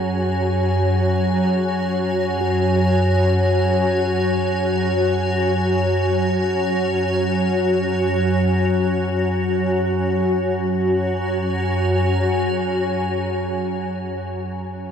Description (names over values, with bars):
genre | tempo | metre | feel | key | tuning
dark ambient drone | free time | none | none | unclear | A4 = 440 Hz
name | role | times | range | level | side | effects
granular cloud pad | sustained chords | 0.0-14.4 s | F#4 to G#5 | -21 LUFS | left 1 dB | built-in reverb
organ-like drone | drone | 0.0-14.1 s | F#2 to F#3 | -21 LUFS | right 1 dB | ensemble chorus, built-in reverb
quartz singing bowl | texture | 2.4-10.0 s | F#4 | -33 LUFS | left 1 dB | none
room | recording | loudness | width
wet huge ambient reverb, RT60 8.3 s | dreamy mix soaked in reverb | -18 LUFS | side -7 dB against mid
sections
0.0-10.0 A section; 10.0-13.8 B section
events
none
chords
0.0 F#sus2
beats
free time